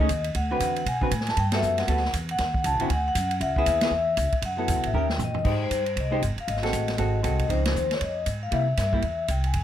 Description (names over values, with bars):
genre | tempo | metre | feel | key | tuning
jazz, small-group swing and bop | 235 BPM | 4/4 | swing 60% on 8ths | Ab major from 5.4 s | A4 = 440 Hz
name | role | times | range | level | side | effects
vibraphone with medium mallets | melody | 0.0-9.6 s | C5 to A5 | -27 LUFS | left 3 dB | none
hollow-body jazz guitar | accompaniment | 0.0-9.0 s | D3 to C5 | -29 LUFS | right 1 dB | none
upright bass | bass | 0.0-9.6 s | F#1 to C3 | -27 LUFS | equal | none
swinging big-band drum kit | drums | 0.1-9.6 s | crash cymbal, hi-hat, kick drum, ride cymbal, snare drum, toms | -30 LUFS | right 1 dB | none
room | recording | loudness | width
little or no reverb | close, detailed microphones | -23 LUFS | side -11 dB against mid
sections
0.0-5.4 A section; 5.4-9.6 B section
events
band accent 1.5, 3.8, 7.6; drum fill 4.9-5.4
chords
0.3 D13; 1.4 Gmaj9; 2.4 D#m7b5; 2.9 D; 3.4 C#m7; 4.4 F#m7; 4.9 D#7; 5.4 Abmaj7; 6.5 Ab7b9; 7.5 Dbmaj9; 8.5 C7